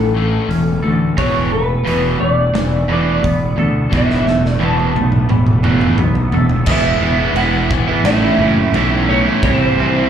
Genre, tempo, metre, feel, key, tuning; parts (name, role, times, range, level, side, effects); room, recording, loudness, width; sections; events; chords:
quiet-loud alternative rock; 87 BPM; 4/4; straight; A4 = 439 Hz
electric guitar through a small old amp; melody; 0.0-10.1 s; A4 to A5; -20 LUFS; left 1 dB; analog chorus, slapback echo
twangy electric guitar; arpeggios; 0.0-6.7 s; E2 to A4; -26 LUFS; equal; ensemble chorus, slapback echo, digital delay
distorted electric guitar; riff; 0.0-10.1 s; E2 to E4; -20 LUFS; left 6 dB; distortion
fuzz fingered electric bass; bass; 0.0-10.0 s; E1 to D2; -18 LUFS; equal; overdrive
big rock drum kit; drums; 0.5-9.6 s; crash cymbal, hi-hat, kick drum, snare drum, toms; -21 LUFS; right 1 dB
overdriven electric guitar; riff; 1.2-10.1 s; E2 to E4; -18 LUFS; right 8 dB; slapback echo
light reverb; live gig heard through the venue's PA, club reverb; -12 LUFS; side -8 dB against mid
0.0-6.7 A section; 6.7-10.1 B section
drum fill 3.9-6.7
0.0 A; 1.2 Esus4; 6.7 E; 8.1 A; 9.4 C